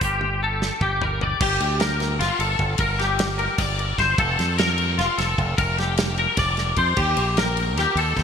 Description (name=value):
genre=math rock and midwest emo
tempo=302 BPM (eighths)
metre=7/8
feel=straight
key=G minor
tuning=A4 = 440 Hz
part: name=twangy electric guitar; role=arpeggios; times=0.0-8.2 s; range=F4 to D5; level=-22 LUFS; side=left 2 dB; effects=ensemble chorus, digital delay
part: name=growling fingered electric bass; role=bass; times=0.0-8.2 s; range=F1 to F2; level=-25 LUFS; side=right 1 dB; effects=overdrive
part: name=loose indie drum kit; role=drums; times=0.0-8.2 s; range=crash cymbal, hi-hat, kick drum, ride cymbal, snare drum, toms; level=-25 LUFS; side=right 1 dB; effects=none
room=moderate lush hall reverb, RT60 1.7 s, small room reverb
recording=bright 1980s-style digital production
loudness=-19 LUFS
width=side -7 dB against mid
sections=0.0-1.4 A section; 1.4-8.2 B section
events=drum fill 0.2-1.4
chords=0.0 Gm; 1.4 Gmadd9; 4.2 Bbmaj7/F; 7.0 Eb